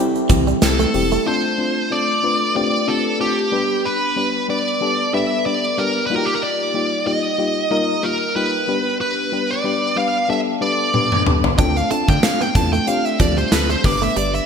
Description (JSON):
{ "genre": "1980s-style pop", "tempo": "93 BPM", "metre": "4/4", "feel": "swing 55% on 16ths", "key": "G mixolydian", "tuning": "A4 = 439 Hz", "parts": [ { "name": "mellow FM electric piano", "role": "accompaniment", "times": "0.0-14.5 s", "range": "G3 to D5", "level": "-21 LUFS", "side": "left 4 dB", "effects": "chorus" }, { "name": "tube shaker", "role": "percussion", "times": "0.2-1.3, 11.6-14.5 s", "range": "none", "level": "-38 LUFS", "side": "right 9 dB", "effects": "none" }, { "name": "direct-recorded clean electric guitar", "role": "riff", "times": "0.3-1.2, 11.6-14.4 s", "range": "E3 to D4", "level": "-26 LUFS", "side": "right 7 dB", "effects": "wide subtle chorus" }, { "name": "round analog bass", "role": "bass", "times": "0.3-1.2, 11.6-14.4 s", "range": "E1 to D3", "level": "-22 LUFS", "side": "equal", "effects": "none" }, { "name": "gated 80s drum kit", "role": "drums", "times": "0.3-1.1, 10.9-14.3 s", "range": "hi-hat, kick drum, snare drum, tambourine, toms", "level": "-18 LUFS", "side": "equal", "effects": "gated reverb" }, { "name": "dark smooth lead guitar", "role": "melody", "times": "0.6-14.5 s", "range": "G4 to A5", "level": "-20 LUFS", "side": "right 2 dB", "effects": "overdrive" } ], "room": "wet lush hall reverb, RT60 1.9 s, small room ambience", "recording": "bright 1980s-style digital production", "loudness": "-16 LUFS", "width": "side -6 dB against mid", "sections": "0.0-1.3 A section; 1.3-14.5 B section", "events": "drum fill 10.9-11.6", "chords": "0.0 C; 1.3 F6; 3.5 G; 6.1 Ebadd9/G; 8.7 G; 11.6 Dm7; 13.8 G", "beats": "0.62 | 1.26 1.91 2.55 3.20 | 3.84 4.49 5.13 5.78 | 6.42 7.07 7.71 8.36 | 9.01 9.65 10.29 10.94 | 11.59 12.23 12.88 13.52 | 14.17" }